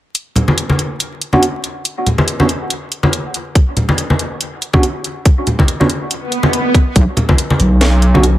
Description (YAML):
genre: deep dubstep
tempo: 141 BPM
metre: 4/4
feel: swing 56% on 16ths, half-time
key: B minor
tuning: A4 = 440 Hz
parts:
  - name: garage drum kit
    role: drums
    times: 0.1-8.3 s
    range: hi-hat, snare drum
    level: -18 LUFS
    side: equal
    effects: none
  - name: congas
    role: percussion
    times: 0.4-8.2 s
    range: none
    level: -16 LUFS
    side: equal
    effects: dub echo
  - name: tine electric piano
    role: stabs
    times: 1.3-8.2 s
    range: B3 to F#4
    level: -18 LUFS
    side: right 2 dB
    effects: phaser, low-pass filter, dub echo
  - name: electronic kick drum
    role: drums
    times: 3.6-7.4 s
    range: none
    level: -11 LUFS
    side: equal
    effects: none
  - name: swell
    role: sound effects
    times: 6.2-7.0 s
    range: none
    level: -17 LUFS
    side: right 1 dB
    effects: none
  - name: wobble bass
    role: bass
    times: 7.0-8.4 s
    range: B1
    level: -10 LUFS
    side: equal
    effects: chorus, tube saturation
room: light reverb, digital ambience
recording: vinyl crackle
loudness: -12 LUFS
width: side -14 dB against mid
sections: 0.1-7.0 A section; 7.0-8.4 B section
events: swell 6.2-7.0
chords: 0.1 Bmadd9; 7.0 N.C.